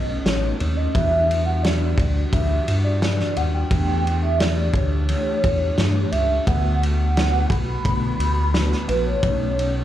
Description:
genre	indie pop, bedroom pop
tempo	87 BPM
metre	4/4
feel	straight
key	E dorian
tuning	A4 = 440 Hz
part	hollow clarinet-like synth lead	melody	0.0-9.8 s	B4 to B5	-25 LUFS	right 1 dB	analog chorus, slapback echo, tape echo
part	mellow electric guitar	accompaniment	0.0-9.8 s	B2 to G4	-27 LUFS	left 3 dB	ensemble chorus, vibrato effect, slapback echo
part	round analog bass	bass	0.0-9.8 s	A1 to G2	-21 LUFS	equal	none
part	loose indie drum kit	drums	0.3-9.7 s	kick drum, ride cymbal, snare drum	-25 LUFS	equal	none
room	small room ambience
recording	live gig heard through the venue's PA, club reverb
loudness	-18 LUFS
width	side -12 dB against mid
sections	0.0-9.8 A section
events	none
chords	0.0 B9; 0.9 Em9; 3.7 A7sus4; 6.5 D6; 9.2 B9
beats	0.26 | 0.95 1.64 2.33 3.02 | 3.71 4.40 5.09 5.78 | 6.47 7.16 7.85 8.54 | 9.23

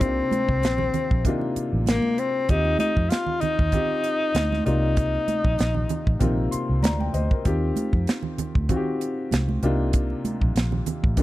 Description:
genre	lush 1970s-style soul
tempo	97 BPM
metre	4/4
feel	swing 54% on 16ths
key	C minor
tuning	A4 = 442 Hz
part	warm tenor saxophone	melody	0.0-6.5 s	Bb3 to F4	-24 LUFS	left 2 dB	none
part	warm concert grand piano	accompaniment	0.0-11.2 s	C3 to C6	-28 LUFS	left 2 dB	none
part	vintage muted fingered electric bass	bass	0.0-11.2 s	A1 to F2	-24 LUFS	equal	none
part	tight funk drum kit	drums	0.0-11.2 s	hi-hat, kick drum, snare drum	-24 LUFS	right 1 dB	none
part	congas	percussion	0.0-11.2 s	none	-31 LUFS	right 5 dB	none
room	little or no reverb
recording	dry, close 1970s-style studio recording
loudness	-21 LUFS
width	side -16 dB against mid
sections	0.0-11.2 A section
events	grand piano fill 6.2-7.5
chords	0.0 Cm11; 2.5 Eb69; 4.7 Cm11; 7.5 Eb69; 9.6 Cm11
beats	| 0.01 0.63 1.25 1.88 | 2.50 3.12 3.74 4.36 | 4.98 5.60 6.22 6.84 | 7.46 8.08 8.70 9.32 | 9.94 10.56 11.18

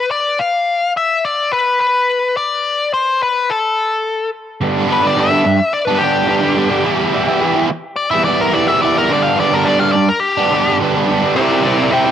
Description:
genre	rock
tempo	107 BPM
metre	4/4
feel	straight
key	G mixolydian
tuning	A4 = 440 Hz
part	nasal lead guitar with a parked wah	melody	0.0-12.1 s	G4 to G5	-15 LUFS	left 3 dB	overdrive, cassette tape
part	biting overdriven guitar	riff	4.6-12.1 s	G2 to E4	-14 LUFS	right 3 dB	cassette tape
room	light reverb, digital ambience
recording	home recording on cassette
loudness	-13 LUFS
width	side -9 dB against mid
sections	0.0-4.6 A section; 4.6-12.1 B section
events	lead electric guitar solo 4.6-12.1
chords	0.0 N.C.; 4.6 G; 6.9 Em; 9.1 G; 11.4 C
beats	| 0.11 0.67 1.23 1.80 | 2.36 2.92 3.48 4.04 | 4.61 5.17 5.73 6.29 | 6.86 7.42 7.98 8.54 | 9.11 9.67 10.23 10.80 | 11.36 11.93

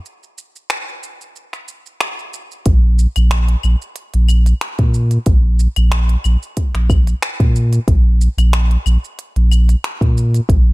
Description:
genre	organic downtempo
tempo	92 BPM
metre	4/4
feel	swing 54% on 16ths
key	unclear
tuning	A4 = 440 Hz
part	organic electronic drum kit	drums	0.1-10.6 s	claves, finger snaps, hi-hat, shaker	-24 LUFS	equal	overdrive, small room ambience
part	warm sub bass	bass	2.7-10.7 s	Bb1 to Bb2	-12 LUFS	equal	sidechain pumping
part	electronic kick drum	drums	2.7-10.6 s	none	-14 LUFS	equal	small room ambience
room	little or no reverb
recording	none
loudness	-13 LUFS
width	side -22 dB against mid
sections	0.0-2.7 A section; 2.7-10.7 B section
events	break 0.1-2.7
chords	none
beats	| 0.05 0.70 1.36 2.01 | 2.66 3.31 3.97 4.62 | 5.27 5.92 6.58 7.23 | 7.88 8.53 9.18 9.84 | 10.49

